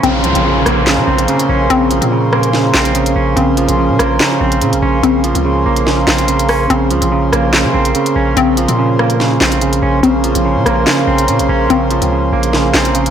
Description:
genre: hip hop, drill.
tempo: 144 BPM.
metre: 4/4.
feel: half-time.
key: Bb minor.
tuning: A4 = 438 Hz.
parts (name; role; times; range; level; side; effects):
semi-hollow electric guitar; accompaniment; 0.0-13.1 s; Db3 to Db4; -16 LUFS; right 5 dB; none.
hand-pumped harmonium; sustained chords; 0.0-13.1 s; Db3 to C5; -17 LUFS; left 1 dB; none.
hollow square pluck; arpeggios; 0.0-13.1 s; C4; -17 LUFS; left 6 dB; chorus, digital delay.
hard-hitting 808-style bass; bass; 0.0-13.1 s; Bb1 to Db3; -17 LUFS; equal; none.
drill drum kit; drums; 0.0-13.1 s; handclaps, hi-hat, rim click, snare drum; -16 LUFS; equal; none.
downlifter; sound effects; 0.0-3.4 s; none; -21 LUFS; left 1 dB; none.
room: light reverb.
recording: blown-out, overdriven recording, overdrive.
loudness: -10 LUFS.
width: side -8 dB against mid.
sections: 0.0-13.1 A section.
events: none.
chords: 0.0 Bbmadd9.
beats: | 0.03 0.45 0.87 1.28 | 1.70 2.12 2.53 2.95 | 3.37 3.78 4.20 4.62 | 5.03 5.45 5.87 6.28 | 6.70 7.12 7.53 7.95 | 8.37 8.78 9.20 9.62 | 10.03 10.45 10.87 11.28 | 11.70 12.12 12.53 12.95.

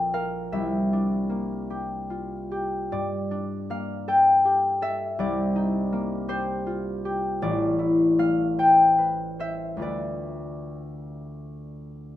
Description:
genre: classical, solo harp piece.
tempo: 45-55 BPM (dotted quarters).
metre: 6/8.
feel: rubato.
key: D dorian from 7.4 s.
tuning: A4 = 442 Hz.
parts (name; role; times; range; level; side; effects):
concert harp; solo; 0.0-12.2 s; A1 to G5; -23 LUFS; left 1 dB; none.
room: little or no reverb.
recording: close, detailed microphones.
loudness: -22 LUFS.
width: side -13 dB against mid.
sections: 0.0-12.2 A section.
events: none.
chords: 0.0 Bbadd9; 0.5 C9; 2.9 Gmadd9; 5.2 Cm7; 7.4 Am7; 9.8 Dm6.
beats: | 0.52 1.69 | 2.90 4.06 | 5.20 6.29 | 7.41 8.57 | 9.81 11.10.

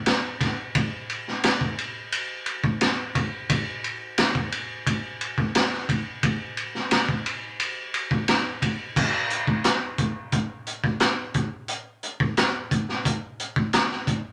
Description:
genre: rock.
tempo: 88 BPM.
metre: 4/4.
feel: straight.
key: none.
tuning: none.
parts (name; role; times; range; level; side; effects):
raw garage drum kit; drums; 0.1-14.2 s; crash cymbal, hi-hat, kick drum, ride cymbal, snare drum; -25 LUFS; equal; none.
room: light reverb.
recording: none.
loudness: -26 LUFS.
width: mono.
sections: 0.0-9.0 A section; 9.0-14.3 B section.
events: none.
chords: none.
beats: 0.06 | 0.75 1.44 2.12 2.81 | 3.49 4.18 4.86 5.55 | 6.23 6.92 7.60 8.29 | 8.97 9.65 10.33 11.02 | 11.70 12.38 13.06 13.74.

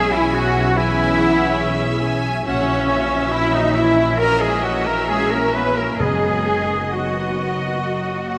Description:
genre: classical, slow romantic movement for symphony orchestra.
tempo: 65-71 BPM.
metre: 4/4.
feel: rubato.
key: unclear.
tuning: A4 = 440 Hz.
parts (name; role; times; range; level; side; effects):
warm symphonic violin section; melody; 0.0-8.4 s; D#5 to F#5; -31 LUFS; equal; none.
bright clarinet; second line; 0.0-8.4 s; C#4 to B4; -30 LUFS; equal; none.
large flute ensemble; second line; 0.0-8.4 s; C#5 to B5; -31 LUFS; equal; none.
warm cor anglais; second line; 0.0-8.4 s; C#4 to B4; -31 LUFS; equal; none.
warm symphonic violin section; second line; 0.0-8.4 s; C#5 to G#5; -31 LUFS; equal; none.
warm symphonic viola section; accompaniment; 0.0-8.4 s; A#3 to G#4; -30 LUFS; equal; none.
clear trombone section; sustained chords; 0.0-8.4 s; D#3 to C#4; -31 LUFS; equal; none.
mellow French horn section; sustained chords; 0.0-8.4 s; C#3 to B3; -30 LUFS; equal; none.
bright trumpet; stabs; 0.0-8.4 s; C#4 to B4; -27 LUFS; equal; none.
warm studio double bass section; bass; 0.0-8.4 s; F#1 to B1; -27 LUFS; equal; none.
warm symphonic cello section; bass; 0.0-8.4 s; C#4 to B4; -26 LUFS; equal; none.
timpani; percussion; 6.0-7.3 s; F#2; -30 LUFS; equal; none.
room: wet concert hall reverb, RT60 2.3 s.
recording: none.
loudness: -19 LUFS.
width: mono.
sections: 0.0-8.4 A section.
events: none.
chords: 0.0 C#m7/B; 2.5 F#7/A#; 6.0 B/F#; 7.8 F#.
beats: 0.76 1.61 | 2.46 3.32 4.19 5.09 | 6.00 6.92 7.84.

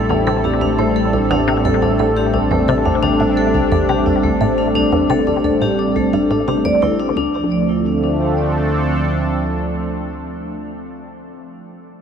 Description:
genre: ambient, sequencer-driven space music.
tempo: 87 BPM.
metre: 4/4.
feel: straight.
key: D minor.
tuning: A4 = 440 Hz.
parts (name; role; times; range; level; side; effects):
sweeping resonant pad; sustained chords; 0.0-10.7 s; F3 to A4; -18 LUFS; equal; chorus.
vibraphone with medium hard mallets; arpeggios; 0.0-7.5 s; A3 to D5; -20 LUFS; left 2 dB; auto-pan, ping-pong delay.
analog drone; bass; 0.0-9.2 s; A1 to D2; -24 LUFS; equal; chorus.
resonant blip pluck; riff; 0.1-7.5 s; C2 to C3; -22 LUFS; equal; phaser, ping-pong delay.
room: wet huge ambient reverb, RT60 9.1 s.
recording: none.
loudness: -14 LUFS.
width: side -7 dB against mid.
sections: 0.0-7.2 A section; 7.2-9.9 B section.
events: filter sweep on synth arpeggio sound 0.0-7.2.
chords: 0.0 Am7; 7.2 Dm7.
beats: 0.27 0.96 | 1.65 2.34 3.03 3.72 | 4.41 5.10 5.79 6.48 | 7.17 7.86 8.55 9.24.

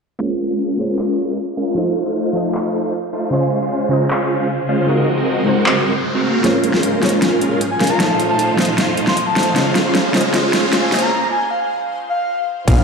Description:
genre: future bass.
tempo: 154 BPM.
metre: 4/4.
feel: half-time.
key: Bb minor.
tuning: A4 = 440 Hz.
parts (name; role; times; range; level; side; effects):
soft round pluck; accompaniment; 0.2-11.1 s; Db3 to F5; -23 LUFS; left 1 dB; chorus, sidechain pumping, ping-pong delay.
supersaw chords; riff; 0.2-12.8 s; Ab3 to Bb5; -18 LUFS; right 1 dB; phaser, sidechain pumping, low-pass filter, ping-pong delay.
big-room dance drum kit; drums; 1.0-12.8 s; crash cymbal, handclaps, hi-hat, snare drum; -20 LUFS; equal; overdrive.
shimmering ambient pad; sustained chords; 4.2-11.1 s; F2 to Eb5; -26 LUFS; equal; chorus, built-in reverb, phaser, sidechain pumping.
riser and sub drop; sound effects; 4.3-12.8 s; none; -26 LUFS; right 1 dB; none.
breathy flute-like synth lead; melody; 7.7-12.4 s; F5 to C6; -20 LUFS; left 1 dB; wide subtle chorus, sidechain pumping, tape echo.
Celtic harp; arpeggios; 12.7-12.8 s; Ab4 to F5; -26 LUFS; left 6 dB; sidechain pumping.
wide unison pluck; arpeggios; 12.7-12.8 s; F5; -26 LUFS; right 1 dB; sidechain pumping.
wide detuned saw bass; bass; 12.7-12.8 s; Bb1; -13 LUFS; equal; chorus, sidechain pumping.
electronic kick drum; drums; 12.7-12.8 s; none; -14 LUFS; equal; overdrive.
room: wet lush hall reverb, RT60 2.0 s.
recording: played on a big sound system in a bare room, large studio reverb, high-pass filter, low-pass filter.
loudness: -15 LUFS.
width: side -5 dB against mid.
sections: 0.2-6.4 A section; 6.4-12.7 B section.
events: filter sweep 0.2-6.4; riser 4.3-6.4; build-up 6.4-12.7; drum fill 6.4-11.1; filter sweep on supersaw synth 6.4-12.7; break 11.1-12.7; impact 12.7.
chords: 0.2 Bbm7; 1.8 F7; 3.3 Dbmaj7; 4.9 Ab9; 6.4 Bbm7; 8.0 F7; 9.6 Dbmaj7; 11.1 N.C..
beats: | 0.21 0.60 0.99 1.38 | 1.77 2.16 2.55 2.94 | 3.33 3.72 4.11 4.50 | 4.88 5.27 5.66 6.05 | 6.44 6.83 7.22 7.61 | 8.00 8.39 8.78 9.17 | 9.56 9.95 10.34 10.73 | 11.12 11.51 11.90 12.29 | 12.68.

